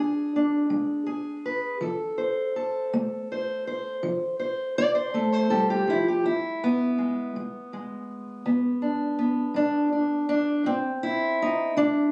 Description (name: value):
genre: acoustic country blues, solo or duo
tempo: 54 BPM (dotted quarters)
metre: 12/8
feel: straight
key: unclear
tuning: A4 = 441 Hz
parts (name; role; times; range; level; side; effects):
- fingerpicked steel-string acoustic guitar; solo; 0.0-12.1 s; E2 to D5; -26 LUFS; equal; none
room: moderate studio reverb, RT60 0.8 s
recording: recorded on a phone in the room, club reverb, compression, nothing above 10.8 kHz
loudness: -26 LUFS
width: mono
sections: 0.0-12.1 A section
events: none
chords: 0.0 E7; 1.8 F; 6.2 E7; 10.7 Am